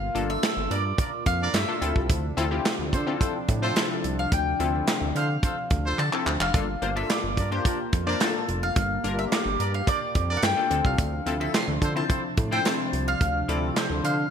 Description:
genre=early-eighties boogie funk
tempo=108 BPM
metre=4/4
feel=straight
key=G dorian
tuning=A4 = 442 Hz
part: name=mandolin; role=melody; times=0.0-14.3 s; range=C5 to C6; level=-29 LUFS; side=left 2 dB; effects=none
part: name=chorused pulse-width pad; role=sustained chords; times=0.0-14.3 s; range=Bb2 to G4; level=-34 LUFS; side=right 1 dB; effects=none
part: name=fat analog bass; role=bass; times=0.0-14.3 s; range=F1 to D3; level=-28 LUFS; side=right 1 dB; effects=none
part: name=funky polysynth comp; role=accompaniment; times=0.1-14.1 s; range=Bb3 to C5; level=-31 LUFS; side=left 5 dB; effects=chorus
part: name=modern studio drum kit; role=drums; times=0.2-14.2 s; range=handclaps, hi-hat, kick drum, snare drum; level=-26 LUFS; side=right 1 dB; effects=gated reverb
part: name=clear horn section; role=second line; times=0.7-14.2 s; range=D4 to D5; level=-33 LUFS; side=right 2 dB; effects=none
room=light reverb, small room ambience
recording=bright 1980s-style digital production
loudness=-23 LUFS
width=side -8 dB against mid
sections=0.0-14.3 A section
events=drum fill 6.0-6.5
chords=0.0 Gm9; 1.8 Dm9; 6.5 Gm9; 10.7 Dm9

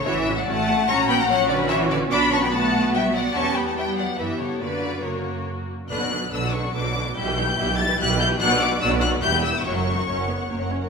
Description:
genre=quick classical-period movement for string orchestra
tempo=144 BPM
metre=3/4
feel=straight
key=B minor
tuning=A4 = 436 Hz
part: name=clear symphonic violin section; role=melody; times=0.0-10.7 s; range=C#5 to A6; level=-25 LUFS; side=left 4 dB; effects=none
part: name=rich symphonic violin section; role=second line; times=0.0-10.9 s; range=D4 to B5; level=-26 LUFS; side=left 3 dB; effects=none
part: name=clear symphonic cello section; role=bass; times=0.0-10.9 s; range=E2 to D4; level=-26 LUFS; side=right 2 dB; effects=none
part: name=clear symphonic viola section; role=accompaniment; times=0.1-10.8 s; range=D3 to G4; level=-27 LUFS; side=right 1 dB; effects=none
part: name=rich symphonic double bass section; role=bass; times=0.1-10.9 s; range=E1 to G2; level=-29 LUFS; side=right 3 dB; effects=none
room=wet concert hall reverb, RT60 2.0 s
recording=minimal, uncompressed stereo recording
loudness=-19 LUFS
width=side -5 dB against mid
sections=0.0-5.9 A section; 5.9-10.9 B section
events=none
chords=0.0 F#m/A; 0.9 F#/A#; 2.1 Bm; 3.3 Em; 4.6 F#; 5.9 Bm; 7.2 Em/B; 8.4 Bm; 9.2 Em; 9.6 F#

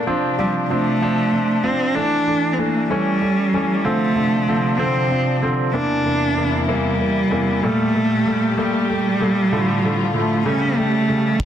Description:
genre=six-eight pop ballad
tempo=64 BPM (dotted quarters)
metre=6/8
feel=straight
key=D minor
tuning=A4 = 440 Hz
part: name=clear baby grand piano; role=accompaniment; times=0.0-11.4 s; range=E2 to D4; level=-21 LUFS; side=equal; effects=none
part: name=warm studio string section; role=sustained chords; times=0.0-11.4 s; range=E2 to G4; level=-25 LUFS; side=equal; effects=none
part: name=warm cello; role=melody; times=0.4-11.4 s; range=G3 to D4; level=-19 LUFS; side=right 1 dB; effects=none
part: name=loose indie drum kit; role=drums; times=11.4 s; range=crash cymbal, kick drum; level=-18 LUFS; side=equal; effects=soft clipping on kick, soft clipping on snare
room=moderate scoring stage reverb, RT60 1.6 s, small room ambience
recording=dense, heavily limited modern master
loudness=-16 LUFS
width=side -10 dB against mid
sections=0.0-11.4 A section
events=none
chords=0.1 Dm7; 2.0 Asus4; 2.9 A; 3.9 Dm7; 5.7 C7/E; 7.6 Gmadd9; 9.5 Dm/A; 10.5 A7

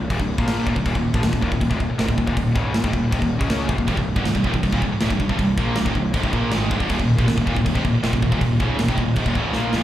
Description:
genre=heavy metal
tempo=159 BPM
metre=4/4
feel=straight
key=unclear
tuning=A4 = 440 Hz
part: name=tight distorted guitar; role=riff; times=0.0-9.8 s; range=C2 to Db4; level=-23 LUFS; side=left 3 dB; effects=distortion, slapback echo
part: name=tight distorted guitar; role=riff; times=0.0-9.8 s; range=C2 to Db4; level=-30 LUFS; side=right 3 dB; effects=none
part: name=fuzz picked electric bass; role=bass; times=0.0-9.8 s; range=C1 to Db2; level=-25 LUFS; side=right 1 dB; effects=overdrive
part: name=tight metal drum kit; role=drums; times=0.1-9.8 s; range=crash cymbal, kick drum, snare drum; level=-23 LUFS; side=equal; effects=none
part: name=scooped high-gain guitar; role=riff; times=3.9-9.8 s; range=C2 to Bb3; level=-26 LUFS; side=right 8 dB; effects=distortion, slapback echo
room=little or no reverb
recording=live gig heard through the venue's PA, club reverb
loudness=-18 LUFS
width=side -12 dB against mid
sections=0.0-9.8 A section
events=drum fill 9.5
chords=0.0 Cm; 0.9 Eb5; 3.9 Cm; 6.9 Eb5

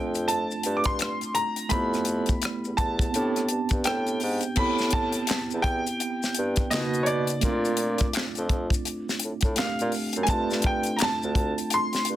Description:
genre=R&B, neo-soul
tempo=84 BPM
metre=4/4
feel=swing 61% on 16ths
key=A minor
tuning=A4 = 440 Hz
part: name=clear grand piano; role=melody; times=0.0-12.2 s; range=C#5 to D6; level=-29 LUFS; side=equal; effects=none
part: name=tine electric piano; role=accompaniment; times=0.0-12.2 s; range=C#3 to G4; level=-30 LUFS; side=right 3 dB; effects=medium stereo tremolo
part: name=mellow bassoon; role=bass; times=0.0-12.2 s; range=D2 to B2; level=-30 LUFS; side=equal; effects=none
part: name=maracas and finger snaps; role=percussion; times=0.1-12.2 s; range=none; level=-37 LUFS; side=left 7 dB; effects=none
part: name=tight funk drum kit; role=drums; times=0.2-12.2 s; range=crash cymbal, handclaps, hi-hat, kick drum, rim click, snare drum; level=-27 LUFS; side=left 1 dB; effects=soft clipping on snare
room=light reverb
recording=dense, heavily limited modern master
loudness=-23 LUFS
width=side -13 dB against mid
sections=0.0-4.6 A section; 4.6-12.2 B section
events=none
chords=0.0 G9sus4; 1.7 Fmaj9#11; 3.1 Am11; 4.6 Am9; 6.7 Bmaj7; 7.4 Bbmaj7; 10.3 G9sus4

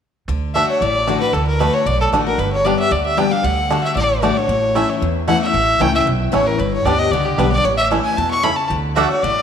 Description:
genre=bluegrass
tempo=228 BPM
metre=4/4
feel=straight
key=D major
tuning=A4 = 441 Hz
part: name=picked steel-string acoustic guitar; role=accompaniment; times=0.3-9.4 s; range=E2 to G4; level=-21 LUFS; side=left 7 dB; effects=none
part: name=upright bass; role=bass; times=0.3-9.4 s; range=G1 to E2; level=-22 LUFS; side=right 2 dB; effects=none
part: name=clear fiddle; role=melody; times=0.5-9.4 s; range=G4 to C#6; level=-18 LUFS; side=equal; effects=none
part: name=bluegrass banjo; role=melody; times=0.6-9.0 s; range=G3 to E4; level=-24 LUFS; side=right 5 dB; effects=none
part: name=mandolin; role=stabs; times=9.0-9.1 s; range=A3 to F#5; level=-20 LUFS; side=right 10 dB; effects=none
room=wet echo chamber reverb, RT60 2.2 s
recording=1960s-style stereo with parts hard left and right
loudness=-15 LUFS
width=side -8 dB against mid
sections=0.3-9.4 A section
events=none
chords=0.3 D; 2.4 G; 3.4 D; 4.5 A; 6.6 G; 7.6 A; 8.7 D

